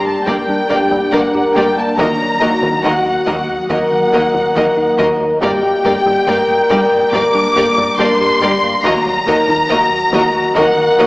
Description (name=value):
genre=cinematic, hybrid orchestral and electronic film score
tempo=70 BPM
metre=4/4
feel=straight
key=G harmonic minor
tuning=A4 = 440 Hz
part: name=warm symphonic violin section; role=melody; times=0.0-11.1 s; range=F#5 to D6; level=-17 LUFS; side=left 1 dB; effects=none
part: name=glassy FM pad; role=sustained chords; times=0.0-11.1 s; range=Gb3 to Eb5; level=-24 LUFS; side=equal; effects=ensemble chorus, built-in reverb, phaser
part: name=mellow French horn section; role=sustained chords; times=0.0-11.1 s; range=Gb4 to Bb4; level=-16 LUFS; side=left 1 dB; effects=none
part: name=sub drop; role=sound effects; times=0.0-2.0 s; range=none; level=barely audible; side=none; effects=none
part: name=smooth synth bass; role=riff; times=0.1-11.1 s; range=Eb2 to G3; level=-32 LUFS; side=equal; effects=none
part: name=rich symphonic violin section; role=second line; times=0.3-11.1 s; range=Bb4 to Eb5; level=-21 LUFS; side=equal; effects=none
part: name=rich symphonic viola section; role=accompaniment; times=0.3-11.1 s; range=Bb3 to G4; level=-23 LUFS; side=equal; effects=none
part: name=thumb-piano-like synth pluck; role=arpeggios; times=0.3-11.1 s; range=Eb3 to G4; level=-24 LUFS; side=equal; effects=chorus
part: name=rich studio cello section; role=bass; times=0.3-11.1 s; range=Eb2 to G2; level=-25 LUFS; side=equal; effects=none
part: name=rich symphonic double bass section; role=bass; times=0.3-11.1 s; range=G1 to Eb2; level=-29 LUFS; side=equal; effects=none
part: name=taiko ensemble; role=drums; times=0.3-11.1 s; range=none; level=-28 LUFS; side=equal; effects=none
room=wet concert hall reverb, RT60 2.0 s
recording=small speaker sound, faint mains hum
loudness=-11 LUFS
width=side -22 dB against mid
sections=0.0-11.1 A section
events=impact 0.0-2.0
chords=0.0 Gm; 2.0 Ebm; 5.4 Gm; 8.8 Ebm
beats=0.27 1.13 | 1.99 2.84 3.70 4.56 | 5.42 6.27 7.13 7.99 | 8.84 9.70 10.56